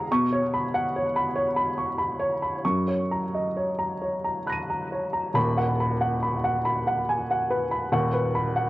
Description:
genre	neoclassical minimalist piano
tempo	65-74 BPM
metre	3/4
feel	rubato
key	unclear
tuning	A4 = 440 Hz
part	warm baby grand piano	solo	0.0-8.7 s	D#1 to Eb7	-23 LUFS	equal	tape echo
room	light reverb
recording	home recording on cassette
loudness	-23 LUFS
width	side -17 dB against mid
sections	0.0-5.4 A section; 5.4-8.7 B section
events	none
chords	0.1 Bsus2; 2.6 Gb6; 5.4 B/D#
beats	| 0.09 0.91 1.74 | 2.62 3.54 4.45 | 5.35 6.23 7.08 | 7.93

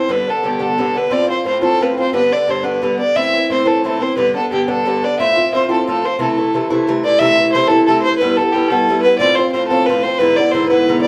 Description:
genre	celtic folk, Celtic jig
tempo	119 BPM (dotted quarters)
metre	6/8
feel	straight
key	A minor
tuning	A4 = 440 Hz
part	warm fiddle	melody	0.0-11.1 s	G4 to E5	-18 LUFS	equal	none
part	Irish bouzouki	accompaniment	0.0-11.1 s	G2 to F4	-19 LUFS	equal	none
room	wet studio reverb, RT60 0.6 s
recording	heard from further back in the room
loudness	-15 LUFS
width	mono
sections	0.0-7.2 A section; 7.2-11.1 A section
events	none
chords	0.1 G; 1.1 F; 2.1 G; 3.1 Am; 4.2 G; 5.2 F; 6.2 Am; 8.2 Em; 9.2 F; 10.2 E7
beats	| 0.09 0.60 | 1.11 1.62 | 2.13 2.64 | 3.15 3.66 | 4.16 4.67 | 5.18 5.68 | 6.19 6.69 | 7.19 7.70 | 8.20 8.70 | 9.20 9.70 | 10.20 10.70

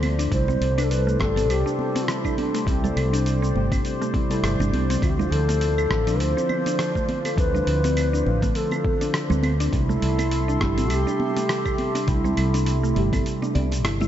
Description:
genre	organic downtempo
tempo	102 BPM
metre	4/4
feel	swing 57% on 16ths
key	unclear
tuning	A4 = 439 Hz
part	muted felt-like synth keys	accompaniment	0.0-14.1 s	C3 to G4	-29 LUFS	right 1 dB	chorus, phaser, sidechain pumping, analog delay
part	warm analog pad	sustained chords	0.0-14.1 s	F3 to C6	-31 LUFS	left 2 dB	chorus, sidechain pumping
part	mallet-like synth pluck	arpeggios	0.0-14.1 s	A3 to D5	-30 LUFS	left 1 dB	chorus, analog delay
part	mellow fretless electric bass	bass	0.0-14.1 s	G1 to D2	-23 LUFS	equal	sidechain pumping
part	dusty soul sampler-style drum kit	drums	0.0-14.1 s	cabasa, claves, hi-hat, rim click	-32 LUFS	right 1 dB	overdrive
part	congas	percussion	0.0-14.1 s	none	-32 LUFS	right 2 dB	none
part	breathy hollow bass bansuri	melody	0.3-13.8 s	C4 to C5	-28 LUFS	right 1 dB	analog delay
part	electronic kick drum	drums	0.3-13.2 s	none	-26 LUFS	equal	overdrive
room	moderate cathedral reverb, RT60 6.0 s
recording	dreamy mix soaked in reverb, nothing above 7.8 kHz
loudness	-20 LUFS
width	side -11 dB against mid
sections	0.0-14.1 A section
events	break 13.3-14.1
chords	0.3 C6; 5.0 Dm9; 9.7 C6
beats	| 0.32 0.91 1.49 2.08 | 2.67 3.26 3.85 4.43 | 5.02 5.61 6.20 6.79 | 7.38 7.96 8.55 9.14 | 9.73 10.32 10.91 11.49 | 12.08 12.67 13.26 13.85

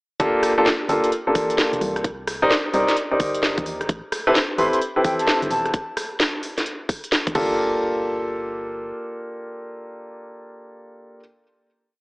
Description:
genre	UK garage, two-step garage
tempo	130 BPM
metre	4/4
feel	swing 64% on 16ths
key	G minor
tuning	A4 = 440 Hz
part	warm grand piano	stabs	0.2-11.2 s	Bb3 to D5	-21 LUFS	equal	tape echo
part	organ-like FM bass	bass	0.2-8.9 s	E1 to Eb2	-36 LUFS	equal	tube saturation
part	electronic kick drum	drums	0.2-7.5 s	none	-23 LUFS	equal	none
part	garage drum kit	drums	0.2-7.5 s	congas, crash cymbal, hi-hat, rim click, snare drum	-24 LUFS	equal	none
part	baroque flute	melody	4.6-5.7 s	G5 to C6	-25 LUFS	equal	tape echo
room	light reverb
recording	dry, gritty hardware recording, AM radio sound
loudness	-19 LUFS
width	side -27 dB against mid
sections	0.2-7.6 drop; 7.6-11.3 final hit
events	drop 0.2-7.6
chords	0.2 Gm7; 2.0 Cm7; 3.9 Am7; 5.7 N.C.; 7.4 Gm7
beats	| 0.20 0.66 1.12 1.58 | 2.04 2.50 2.97 3.43 | 3.89 4.35 4.81 5.27 | 5.74 6.20 6.66 7.12 | 7.58 8.04 8.51 8.97 | 9.43 9.89 10.35 10.81

